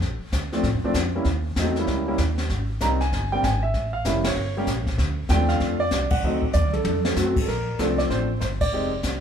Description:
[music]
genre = jazz piano trio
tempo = 193 BPM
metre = 4/4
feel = swing 63% on 8ths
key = unclear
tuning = A4 = 440 Hz
[part]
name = upright bass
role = bass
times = 0.0-9.2 s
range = F1 to A2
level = -25 LUFS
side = equal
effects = none
[part]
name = jazz brush drum kit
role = drums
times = 0.0-9.2 s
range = brushed snare drum, crash cymbal, hi-hat, kick drum, ride cymbal, snare drum, toms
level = -28 LUFS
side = left 2 dB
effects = none
[part]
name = warm concert grand piano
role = melody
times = 0.5-9.2 s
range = F3 to Bb5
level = -24 LUFS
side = right 1 dB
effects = none
[sound]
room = moderate large studio reverb, RT60 1.0 s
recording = band playing live in one room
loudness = -21 LUFS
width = side -8 dB against mid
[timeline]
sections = 0.0-7.5 A section; 7.5-9.2 B section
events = band accent 4.2, 6.1, 8.6; drum fill 6.5-7.2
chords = 0.0 Bbmaj7; 1.3 Eb7b9; 2.5 Abmaj7; 3.7 A7b9; 5.0 Dm7; 6.2 D7b9; 6.9 F; 7.5 Bbmaj9

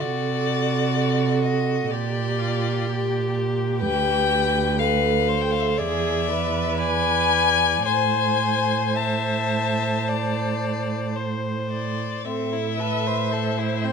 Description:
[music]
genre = classical, slow romantic movement for string quartet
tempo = 54-64 BPM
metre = 4/4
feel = rubato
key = A minor from 3.8 s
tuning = A4 = 440 Hz
[part]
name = rich violin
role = melody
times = 0.0-13.9 s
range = D5 to A5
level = -24 LUFS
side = left 7 dB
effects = none
[part]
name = warm violin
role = second line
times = 0.0-13.9 s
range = C4 to E5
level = -28 LUFS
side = left 5 dB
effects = none
[part]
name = rich viola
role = accompaniment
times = 0.0-13.9 s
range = F4 to C5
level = -28 LUFS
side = right 3 dB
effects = none
[part]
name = dark cello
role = bass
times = 0.0-13.9 s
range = D2 to C3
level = -25 LUFS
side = right 5 dB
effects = none
[sound]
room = moderate recital hall reverb, RT60 1.4 s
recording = close, detailed microphones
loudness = -20 LUFS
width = side -6 dB against mid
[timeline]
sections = 0.0-12.3 A section; 12.3-13.9 B section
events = none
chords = 0.0 D7/C; 1.9 Gm/Bb; 3.8 D7sus4; 5.8 E7; 7.9 Am

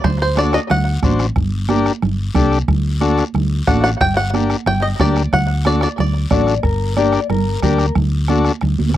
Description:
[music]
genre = latin, cumbia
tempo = 182 BPM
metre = 4/4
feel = straight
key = G harmonic minor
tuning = A4 = 436 Hz
[part]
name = bluegrass banjo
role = melody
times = 0.0-1.2, 3.7-6.3 s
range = C5 to G5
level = -19 LUFS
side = equal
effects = slapback echo
[part]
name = hollow-body short-scale fingered electric bass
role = bass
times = 0.0-9.0 s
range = G1 to D2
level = -18 LUFS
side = equal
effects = none
[part]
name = bombo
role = percussion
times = 0.0-9.0 s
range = none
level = -21 LUFS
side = equal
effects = none
[part]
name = congas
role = percussion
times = 0.0-9.0 s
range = none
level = -22 LUFS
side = right 7 dB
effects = none
[part]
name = guiro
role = percussion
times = 0.0-9.0 s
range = none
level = -34 LUFS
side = left 6 dB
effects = none
[part]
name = combo organ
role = accompaniment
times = 0.4-8.5 s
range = D4 to C5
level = -18 LUFS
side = left 5 dB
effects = none
[part]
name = mellow electric guitar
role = second line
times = 6.3-7.9 s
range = Bb4 to D5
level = -21 LUFS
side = left 7 dB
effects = none
[sound]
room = little or no reverb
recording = dry, close 1970s-style studio recording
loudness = -14 LUFS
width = side -13 dB against mid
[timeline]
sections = 0.0-9.0 A section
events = drum fill 8.8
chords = 0.0 D7; 1.4 Gm; 2.7 D; 4.0 Gm; 5.3 D; 6.6 Gm; 8.0 D

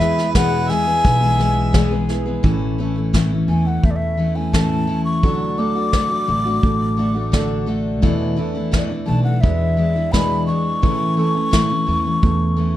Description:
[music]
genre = acoustic folk duo or small band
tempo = 86 BPM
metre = 4/4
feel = straight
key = A major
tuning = A4 = 440 Hz
[part]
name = breathy baroque flute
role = melody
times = 0.0-12.8 s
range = D5 to D6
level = -22 LUFS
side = left 2 dB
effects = none
[part]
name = warm harmonica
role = second line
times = 0.0-2.1 s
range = B4 to E5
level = -26 LUFS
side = right 5 dB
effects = none
[part]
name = picked steel-string acoustic guitar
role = accompaniment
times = 0.0-12.8 s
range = E2 to G#4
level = -21 LUFS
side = left 3 dB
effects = none
[part]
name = warm upright piano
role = arpeggios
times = 0.0-12.8 s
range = E3 to A4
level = -26 LUFS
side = right 5 dB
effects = none
[part]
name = upright bass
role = bass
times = 0.0-12.8 s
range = A1 to E2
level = -22 LUFS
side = right 1 dB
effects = none
[part]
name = soft brush drum kit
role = drums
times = 0.0-12.4 s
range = kick drum, snare drum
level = -19 LUFS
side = equal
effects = none
[sound]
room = light reverb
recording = dark, warm production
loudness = -16 LUFS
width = side -13 dB against mid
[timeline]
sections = 0.0-2.4 A section; 2.4-12.8 B section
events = none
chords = 0.0 E; 2.4 A; 5.2 D; 8.0 E7sus4; 9.4 E7; 10.8 A

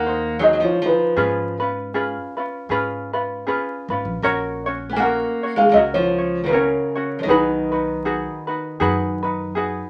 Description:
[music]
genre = Hawaiian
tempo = 79 BPM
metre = 4/4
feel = swing 56% on 8ths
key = F# major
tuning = A4 = 440 Hz
[part]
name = felt-muted upright piano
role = melody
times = 0.0-9.5 s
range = C#4 to G#5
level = -21 LUFS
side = equal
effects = none
[part]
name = picked steel-string acoustic guitar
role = second line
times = 0.0-9.5 s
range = C#3 to B3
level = -29 LUFS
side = equal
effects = none
[part]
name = ukulele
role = accompaniment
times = 0.0-9.9 s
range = C#4 to C#5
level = -26 LUFS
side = equal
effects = none
[part]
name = upright bass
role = bass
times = 0.0-9.8 s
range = G#1 to G#2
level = -33 LUFS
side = equal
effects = none
[sound]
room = moderate studio reverb, RT60 0.5 s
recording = vinyl crackle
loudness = -21 LUFS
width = mono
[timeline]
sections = 0.0-9.9 A section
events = none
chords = 0.0 G#7; 1.2 C#7/G#; 4.2 F#/A#; 7.3 B6

